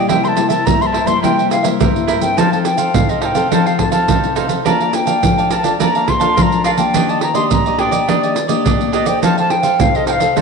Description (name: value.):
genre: samba and choro.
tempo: 105 BPM.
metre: 4/4.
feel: straight.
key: Bb major.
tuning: A4 = 440 Hz.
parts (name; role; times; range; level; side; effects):
wooden flute; melody; 0.0-10.4 s; D5 to C6; -17 LUFS; left 1 dB; none.
cavaquinho; accompaniment; 0.0-10.4 s; D4 to A5; -19 LUFS; right 6 dB; none.
nylon-string guitar; accompaniment; 0.0-10.4 s; G2 to C5; -19 LUFS; left 11 dB; none.
maracas, surdo and pandeiro; percussion; 0.1-10.4 s; none; -18 LUFS; right 5 dB; none.
room: wet echo chamber reverb, RT60 1.7 s, studio ambience.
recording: 1960s-style stereo with parts hard left and right, nothing above 10.8 kHz.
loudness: -12 LUFS.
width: side -4 dB against mid.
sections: 0.0-10.4 A section.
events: none.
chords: 0.1 C7; 2.4 F7; 4.7 Bbmaj7; 6.9 Ebmaj7; 9.2 F7.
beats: | 0.09 0.66 1.23 1.80 | 2.38 2.95 3.52 4.09 | 4.66 5.23 5.80 6.38 | 6.95 7.52 8.09 8.66 | 9.23 9.80 10.37.